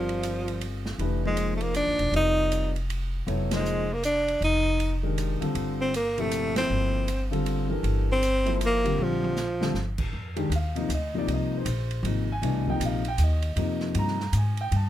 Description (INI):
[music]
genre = modal jazz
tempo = 157 BPM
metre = 3/4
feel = swing 64% on 8ths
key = F dorian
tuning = A4 = 440 Hz
[part]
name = breathy tenor saxophone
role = melody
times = 0.0-10.0 s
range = F3 to Eb4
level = -26 LUFS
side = equal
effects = none
[part]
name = dark baby grand piano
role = accompaniment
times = 0.0-14.9 s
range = Bb2 to Bb5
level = -30 LUFS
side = left 2 dB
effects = none
[part]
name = upright bass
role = bass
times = 0.0-14.9 s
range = E1 to Ab2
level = -28 LUFS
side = equal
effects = none
[part]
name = open jazz drum kit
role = drums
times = 0.1-14.8 s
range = crash cymbal, hi-hat, kick drum, ride cymbal, snare drum, toms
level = -37 LUFS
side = right 3 dB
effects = none
[sound]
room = little or no reverb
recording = close, detailed microphones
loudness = -24 LUFS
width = side -12 dB against mid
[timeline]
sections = 0.0-10.1 A section; 10.1-14.9 B section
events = band accent 3.5, 6.5; drum fill 9.0-9.7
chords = 0.0 Gm11; 1.0 Fm11; 5.6 Gm11; 10.1 Fm11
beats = 0.23 0.61 | 0.99 1.37 1.75 | 2.13 2.51 2.89 | 3.27 3.65 4.03 | 4.41 4.79 5.17 | 5.55 5.93 6.31 | 6.70 7.08 7.46 | 7.84 8.22 8.60 | 8.98 9.37 9.75 | 10.13 10.51 10.89 | 11.28 11.66 12.04 | 12.42 12.80 13.19 | 13.57 13.95 14.33 | 14.72